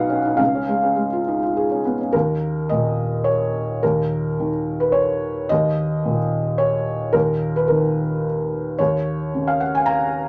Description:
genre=neoclassical minimalist piano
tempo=108 BPM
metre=3/4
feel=rubato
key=unclear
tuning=A4 = 440 Hz
part: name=felt-muted upright piano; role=solo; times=0.0-10.3 s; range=B1 to Bb5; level=-21 LUFS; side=equal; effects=none
room=moderate studio reverb, RT60 0.6 s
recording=none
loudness=-21 LUFS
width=mono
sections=0.0-2.1 A section; 2.1-10.3 B section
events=none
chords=0.4 Db; 2.1 Eb5; 8.8 Ebm11

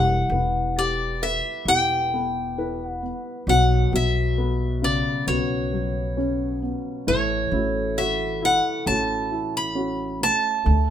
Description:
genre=acoustic folk-pop ballad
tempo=67 BPM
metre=4/4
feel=straight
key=unclear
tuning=A4 = 438 Hz
part: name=picked steel-string acoustic guitar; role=melody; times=0.0-10.9 s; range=C#5 to B5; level=-23 LUFS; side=equal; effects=none
part: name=warm upright piano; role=accompaniment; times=0.0-10.9 s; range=B2 to B4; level=-28 LUFS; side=left 4 dB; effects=none
part: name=felt-muted upright piano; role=arpeggios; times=0.0-10.9 s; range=E3 to F#4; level=-30 LUFS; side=right 1 dB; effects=none
part: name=upright bass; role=bass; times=0.0-10.9 s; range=E1 to D2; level=-26 LUFS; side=equal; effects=none
room=moderate studio reverb, RT60 0.8 s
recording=minimal, uncompressed stereo recording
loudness=-21 LUFS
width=side -10 dB against mid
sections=0.0-10.9 A section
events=none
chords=0.0 Emadd9; 3.5 Bsus2; 7.1 A6

